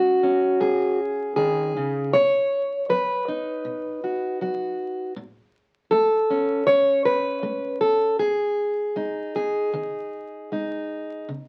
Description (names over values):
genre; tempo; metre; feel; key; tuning
folk, solo fingerstyle acoustic guitar; 79 BPM; 4/4; straight; unclear; A4 = 440 Hz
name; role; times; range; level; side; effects
fingerpicked plugged-in steel-string acoustic guitar; solo; 0.0-11.5 s; G#2 to C#5; -23 LUFS; equal; none
room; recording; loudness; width
wet club ambience, RT60 0.5 s; very old 78 rpm record, vinyl crackle; -23 LUFS; mono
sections
0.0-11.5 A section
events
none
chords
0.0 C#5; 2.1 B; 5.2 A; 8.2 G#5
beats
0.60 1.37 | 2.13 2.90 3.65 4.41 | 5.16 5.92 6.67 7.43 | 8.19 8.96 9.73 10.51 | 11.29